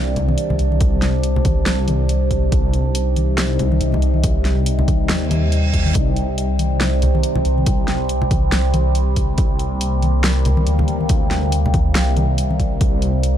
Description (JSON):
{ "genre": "deep dubstep", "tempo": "140 BPM", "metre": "4/4", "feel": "swing 57% on 16ths, half-time", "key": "C minor", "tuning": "A4 = 440 Hz", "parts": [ { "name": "overtone-sweeping drone", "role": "sustained chords", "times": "0.0-13.4 s", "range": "C3 to Eb4", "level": "-22 LUFS", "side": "left 1 dB", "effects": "chorus, built-in reverb" }, { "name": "dark detuned saw bass", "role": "bass", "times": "0.0-13.4 s", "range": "C2 to Eb2", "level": "-18 LUFS", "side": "equal", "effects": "none" }, { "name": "deep house drum kit", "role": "drums", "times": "0.2-13.3 s", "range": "hi-hat, snare drum", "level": "-24 LUFS", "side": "equal", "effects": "none" }, { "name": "congas", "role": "percussion", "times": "0.2-12.6 s", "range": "none", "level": "-25 LUFS", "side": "left 1 dB", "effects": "none" }, { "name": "electronic kick drum", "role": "drums", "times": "0.8-12.9 s", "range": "none", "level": "-19 LUFS", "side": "equal", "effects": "none" }, { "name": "reverse cymbal", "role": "sound effects", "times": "5.2-6.0 s", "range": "none", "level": "-30 LUFS", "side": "right 7 dB", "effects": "none" } ], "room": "little or no reverb", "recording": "dark, warm production", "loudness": "-15 LUFS", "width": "side -10 dB against mid", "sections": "0.0-13.4 A section", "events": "reverse cymbal 5.2-6.0", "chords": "0.0 Cmadd9", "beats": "0.38 | 0.81 1.24 1.67 2.09 | 2.52 2.95 3.38 3.81 | 4.24 4.67 5.09 5.52 | 5.95 6.38 6.81 7.24 | 7.67 8.09 8.52 8.95 | 9.38 9.81 10.24 10.66 | 11.09 11.52 11.95 12.38 | 12.81 13.24" }